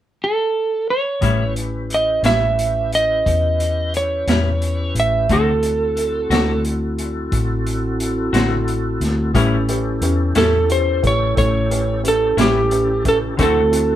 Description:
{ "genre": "slow blues", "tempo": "59 BPM (dotted quarters)", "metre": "12/8", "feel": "straight", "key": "A mixolydian", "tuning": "A4 = 444 Hz", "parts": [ { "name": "electric slide guitar", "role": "melody", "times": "0.2-14.0 s", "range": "G4 to E5", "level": "-18 LUFS", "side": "right 2 dB", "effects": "none" }, { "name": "clean electric guitar", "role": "accompaniment", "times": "1.2-13.6 s", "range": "A2 to F#4", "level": "-22 LUFS", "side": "left 5 dB", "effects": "tremolo" }, { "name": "vintage muted fingered electric bass", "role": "bass", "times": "1.2-14.0 s", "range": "A1 to E2", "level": "-21 LUFS", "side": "left 1 dB", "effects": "none" }, { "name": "crunchy breakbeat drum kit", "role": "drums", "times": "1.2-13.9 s", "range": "hi-hat, kick drum, snare drum", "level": "-23 LUFS", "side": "equal", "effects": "none" }, { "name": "mellow tonewheel organ", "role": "sustained chords", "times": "1.3-14.0 s", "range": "C4 to B4", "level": "-26 LUFS", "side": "left 1 dB", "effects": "slow rotary speaker, chorus vibrato" }, { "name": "warm upright piano", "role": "accompaniment", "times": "9.4-14.0 s", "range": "C4 to B4", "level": "-25 LUFS", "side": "right 2 dB", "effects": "none" } ], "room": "moderate studio reverb, RT60 0.7 s", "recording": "band playing live in one room", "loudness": "-16 LUFS", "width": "side -12 dB against mid", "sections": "0.0-1.2 A section; 1.2-9.4 B section; 9.4-14.0 C section", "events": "none", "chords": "0.0 N.C.; 1.2 A7; 5.3 D7; 9.4 A7; 13.4 D7" }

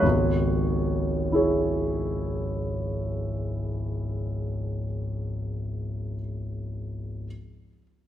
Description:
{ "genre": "classical, impressionist solo piano", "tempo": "48 BPM", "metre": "4/4", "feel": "rubato", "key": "C# minor", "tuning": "A4 = 440 Hz", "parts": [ { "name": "clear concert grand piano", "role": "solo", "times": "0.0-7.3 s", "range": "C#1 to C#5", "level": "-25 LUFS", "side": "equal", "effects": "none" } ], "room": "moderate scoring stage reverb, RT60 1.7 s", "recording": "none", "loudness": "-26 LUFS", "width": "side -11 dB against mid", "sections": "0.0-5.1 A section", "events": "none", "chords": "0.0 C#m" }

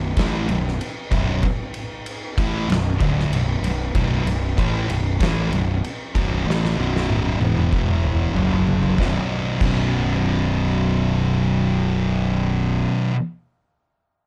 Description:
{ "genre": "stoner and doom metal", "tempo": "95 BPM", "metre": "4/4", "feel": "straight", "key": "B minor", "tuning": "A4 = 440 Hz", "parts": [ { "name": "thick fuzz guitar", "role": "riff", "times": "0.0-13.1 s", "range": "B1 to A3", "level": "-24 LUFS", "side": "equal", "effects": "distortion" }, { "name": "fuzz fingered electric bass", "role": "bass", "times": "0.0-12.8 s", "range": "B0 to A1", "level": "-26 LUFS", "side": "equal", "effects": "overdrive, tube saturation" }, { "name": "oversized low-tuned drum kit", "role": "drums", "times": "0.2-9.8 s", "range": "crash cymbal, kick drum, ride cymbal, snare drum, toms", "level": "-26 LUFS", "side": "equal", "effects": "none" } ], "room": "light reverb", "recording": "dark, warm production", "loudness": "-21 LUFS", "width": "mono", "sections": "0.0-9.0 A section; 9.0-11.5 B section", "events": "drum fill 6.5-9.0", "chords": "0.0 B5; 7.4 E5; 8.4 F#5; 9.0 B5" }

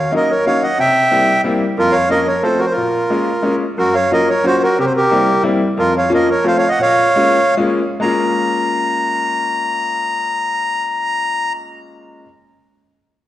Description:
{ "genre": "musette waltz", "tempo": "129-184 BPM", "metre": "3/4", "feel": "rubato", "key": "Bb minor", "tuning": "A4 = 440 Hz", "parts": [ { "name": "accordion", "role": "melody", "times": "0.0-11.5 s", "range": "F4 to Bb5", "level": "-15 LUFS", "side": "equal", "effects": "none" }, { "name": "bright upright piano", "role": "accompaniment", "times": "0.0-12.2 s", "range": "F2 to F4", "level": "-19 LUFS", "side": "left 2 dB", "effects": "none" } ], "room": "wet recital hall reverb, RT60 1.6 s", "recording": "worn, warbling old tape, cassette tape, warbly pitch drift", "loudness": "-13 LUFS", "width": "side -13 dB against mid", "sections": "0.0-3.8 A section; 3.8-8.0 B section; 8.0-10.8 C section", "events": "slowing down 5.8-8.0", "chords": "0.0 Ebm7; 0.8 C7; 1.8 Bbm/F; 2.4 F; 2.8 Bbm7; 3.8 Gbmaj7; 4.8 C7; 5.8 Bbm/F; 6.4 F; 6.8 Bbm7" }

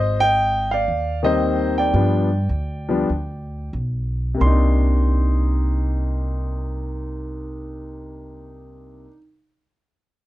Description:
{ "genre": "jazz piano trio", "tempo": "85-122 BPM", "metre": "4/4", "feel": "swing 67% on 8ths", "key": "C minor", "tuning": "A4 = 438 Hz", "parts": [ { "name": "warm concert grand piano", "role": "melody", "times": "0.0-9.2 s", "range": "C3 to C6", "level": "-21 LUFS", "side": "left 1 dB", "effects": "none" }, { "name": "upright bass", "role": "bass", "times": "0.0-9.1 s", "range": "Ab1 to G2", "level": "-21 LUFS", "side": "right 1 dB", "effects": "none" } ], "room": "light reverb", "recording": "dry, close 1970s-style studio recording", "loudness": "-18 LUFS", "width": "side -15 dB against mid", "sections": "0.0-4.4 A section; 4.4-10.0 B section", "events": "slowing down 0.0-4.4", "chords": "0.0 Abmaj7; 1.9 G7; 4.4 Cm9" }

